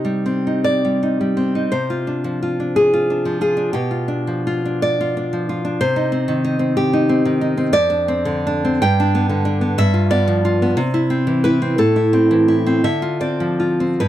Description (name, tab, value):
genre	romantic piece for solo classical guitar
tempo	48-64 BPM (dotted quarters)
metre	6/8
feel	rubato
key	C minor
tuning	A4 = 440 Hz
part	nylon-string guitar	solo	0.0-14.1 s	F2 to G5	-16 LUFS	equal	none
room	studio ambience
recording	dry, close 1970s-style studio recording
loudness	-16 LUFS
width	side -12 dB against mid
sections	0.0-14.1 A section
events	none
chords	0.0 Cm; 1.7 Dm7b5/C; 3.7 G7/B; 5.8 Cm; 7.7 Dm7/F; 8.8 G; 9.8 G7; 10.8 C; 11.8 Am; 12.9 Dm7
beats	0.65 | 1.70 2.72 | 3.71 4.83 | 5.81 6.77 | 7.73 8.83 | 9.80 10.79 | 11.80 12.85 | 14.02